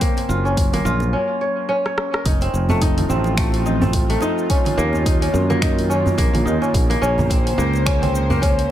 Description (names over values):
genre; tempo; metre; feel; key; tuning
organic downtempo; 107 BPM; 4/4; swing 58% on 16ths; unclear; A4 = 443 Hz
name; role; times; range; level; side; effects
airy breathy pad; sustained chords; 0.0-8.7 s; Db3 to C5; -26 LUFS; right 1 dB; chorus, sidechain pumping
kora; arpeggios; 0.0-8.7 s; A3 to Db5; -21 LUFS; equal; dub echo
deep house drum kit; drums; 0.0-8.7 s; congas, finger snaps, hi-hat, rim click, shaker; -27 LUFS; right 2 dB; studio reverb
electronic kick drum; drums; 0.0-8.6 s; none; -20 LUFS; equal; studio reverb
djembe; percussion; 0.2-8.4 s; none; -28 LUFS; right 1 dB; none
sustaining fretless electric bass; bass; 0.3-8.6 s; F1 to Gb2; -21 LUFS; equal; tube saturation
room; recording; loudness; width
light reverb; echo-heavy mix; -16 LUFS; side -12 dB against mid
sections
0.0-2.3 A section; 2.3-8.7 B section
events
break 1.1-2.3; drum fill 1.8-2.3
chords
0.0 Gbmaj7; 2.3 F7; 4.5 Ebm7; 6.7 Bbmadd9